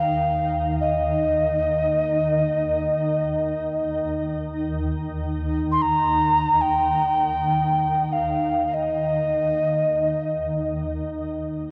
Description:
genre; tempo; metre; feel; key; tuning
world meditative, free-time meditation music; free time; none; none; Eb major pentatonic; A4 = 438 Hz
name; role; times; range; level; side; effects
bright reedy alto ocarina; melody; 0.0-10.7 s; Eb5 to C6; -24 LUFS; equal; none
shimmering ambient pad; drone; 0.0-11.7 s; Eb2 to Eb3; -28 LUFS; equal; chorus, built-in reverb
room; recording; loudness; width
wet huge ambient reverb, RT60 4.8 s; worn, warbling old tape, cassette tape, warbly pitch drift; -23 LUFS; mono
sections
0.0-11.1 A section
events
none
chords
none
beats
free time

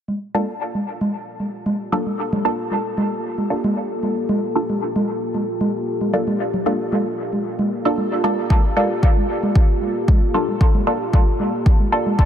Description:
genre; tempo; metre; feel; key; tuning
dub techno; 114 BPM; 4/4; swing 53% on 16ths; G minor; A4 = 444 Hz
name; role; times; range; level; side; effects
deep dark ambient pad; sustained chords; 1.4-12.3 s; Bb3 to A4; -25 LUFS; equal; chorus, built-in reverb, sidechain pumping
congas; percussion; 0.1-12.2 s; none; -23 LUFS; right 1 dB; overdrive, sidechain pumping on perc, dub echo
filtered dub chord stab; stabs; 0.3-12.1 s; Bb3 to A4; -23 LUFS; equal; chorus, phaser, sidechain pumping, dub echo
electronic kick drum; drums; 8.5-12.3 s; none; -15 LUFS; equal; overdrive
room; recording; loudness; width
light reverb; none; -18 LUFS; side -9 dB against mid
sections
0.1-12.3 A section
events
none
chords
0.1 Gm9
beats
| 0.08 0.61 1.13 1.66 | 2.19 2.71 3.24 3.77 | 4.29 4.82 5.34 5.87 | 6.40 6.92 7.45 7.98 | 8.50 9.03 9.55 10.08 | 10.61 11.13 11.66 12.19

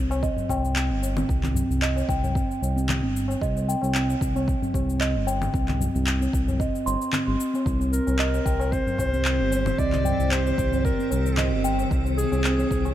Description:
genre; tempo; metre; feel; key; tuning
organic downtempo; 113 BPM; 4/4; swing 54% on 16ths; C minor; A4 = 441 Hz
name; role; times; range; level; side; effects
steel tongue drum; arpeggios; 0.0-12.9 s; C4 to C6; -27 LUFS; right 1 dB; low-pass filter, digital delay
smooth synth bass; bass; 0.0-12.9 s; G1 to C2; -26 LUFS; equal; sidechain pumping
electronic cabasa, handclaps and congas; drums; 0.1-12.9 s; none; -31 LUFS; left 2 dB; overdrive
tabla; percussion; 0.1-12.9 s; none; -34 LUFS; left 4 dB; none
electronic kick drum; drums; 0.2-12.8 s; none; -27 LUFS; equal; overdrive
granular cloud pad; sustained chords; 8.8-12.9 s; Eb3 to C5; -31 LUFS; right 1 dB; built-in reverb, sidechain pumping
warm clarinet; melody; 7.9-12.9 s; Ab4 to D5; -28 LUFS; left 1 dB; digital delay
room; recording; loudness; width
light reverb, studio reverb; none; -21 LUFS; side -12 dB against mid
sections
0.0-12.9 A section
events
none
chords
0.0 Cm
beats
0.23 0.76 | 1.29 1.82 2.36 2.89 | 3.42 3.95 4.48 5.01 | 5.54 6.07 6.60 7.13 | 7.67 8.20 8.73 9.26 | 9.79 10.32 10.85 11.38 | 11.91 12.44

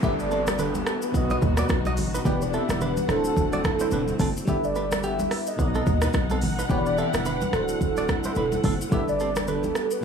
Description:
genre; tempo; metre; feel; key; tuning
afrobeats; 108 BPM; 4/4; swing 58% on 16ths; unclear; A4 = 440 Hz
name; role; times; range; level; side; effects
warm velvety synth lead; melody; 0.0-10.0 s; A4 to E5; -28 LUFS; right 1 dB; chorus, tremolo, digital delay, plate reverb
FM electric piano; accompaniment; 0.0-10.0 s; B2 to D#5; -31 LUFS; left 5 dB; chorus, plate reverb
warm studio string section; sustained chords; 0.0-10.0 s; D3 to F#5; -32 LUFS; equal; plate reverb
direct-recorded clean electric guitar; riff; 0.0-9.6 s; B3 to D#5; -32 LUFS; right 5 dB; digital delay
hard-hitting 808-style bass; bass; 0.0-9.7 s; D1 to D#2; -28 LUFS; equal; none
afro-pop drum kit; drums; 0.0-10.0 s; hi-hat, kick drum, rim click, shaker; -28 LUFS; equal; none
congas; percussion; 0.0-9.7 s; none; -32 LUFS; right 3 dB; none
downlifter; sound effects; 0.0-2.3 s; none; -37 LUFS; right 1 dB; none
room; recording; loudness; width
light reverb; studio reverb; -22 LUFS; side -6 dB against mid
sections
0.0-10.0 A section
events
none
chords
0.0 Gadd9; 1.1 B; 2.3 Em7; 3.1 D7; 4.5 Gadd9; 5.6 B; 6.7 Em7; 7.5 D7; 8.9 Gadd9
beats
| 0.03 0.59 1.14 1.70 | 2.25 2.81 3.36 3.92 | 4.47 5.03 5.59 6.14 | 6.70 7.25 7.81 8.36 | 8.92 9.47 10.03

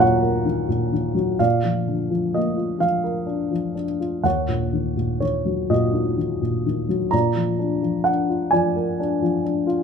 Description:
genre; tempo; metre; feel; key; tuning
classical, lyrical solo piano; 42 BPM (dotted quarters); 6/8; rubato; Eb minor; A4 = 440 Hz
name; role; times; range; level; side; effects
dark baby grand piano; solo; 0.0-9.8 s; Eb2 to Bb5; -19 LUFS; equal; none
room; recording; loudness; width
light reverb; minimal, uncompressed stereo recording; -19 LUFS; side -6 dB against mid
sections
0.0-9.8 A section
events
none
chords
0.0 Ebm7; 1.4 Bb; 4.2 Ebm7; 7.1 Bb7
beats
| 1.40 2.82 | 4.25 5.71 | 7.13 8.53

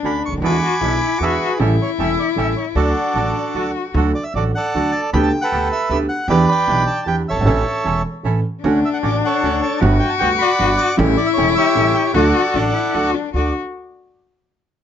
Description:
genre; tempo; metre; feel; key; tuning
tango; 154 BPM; 3/4; rubato; D major; A4 = 441 Hz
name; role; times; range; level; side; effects
warm cello; second line; 0.0-4.0, 8.6-13.5 s; D4 to F#4; -20 LUFS; left 7 dB; none
dark grand piano; accompaniment; 0.0-13.5 s; E1 to A4; -21 LUFS; right 2 dB; none
bandoneon; stabs; 0.0-13.5 s; G3 to A4; -28 LUFS; right 8 dB; none
upright bass; bass; 0.0-13.5 s; E1 to E2; -22 LUFS; equal; none
bandoneon; melody; 0.1-13.5 s; F#4 to D6; -20 LUFS; right 2 dB; plate reverb
room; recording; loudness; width
light reverb; nothing above 7.6 kHz; -15 LUFS; side -9 dB against mid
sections
0.0-4.0 A section; 4.0-13.3 B section; 13.3-14.5 C section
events
none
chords
0.4 E7; 1.6 A7; 2.8 D; 5.1 Gadd9/D; 6.3 Em7; 7.5 A; 8.6 Dmaj7; 9.8 Gmaj7; 11.0 A7; 12.1 D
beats
0.03 | 0.42 0.82 1.21 | 1.60 1.98 2.37 | 2.76 3.15 3.55 | 3.95 4.35 4.74 | 5.13 5.52 5.90 | 6.29 6.68 7.06 | 7.45 7.84 8.24 | 8.63 9.03 9.42 | 9.81 10.21 10.60 | 10.98 11.37 11.76 | 12.15 12.54 12.94 | 13.34

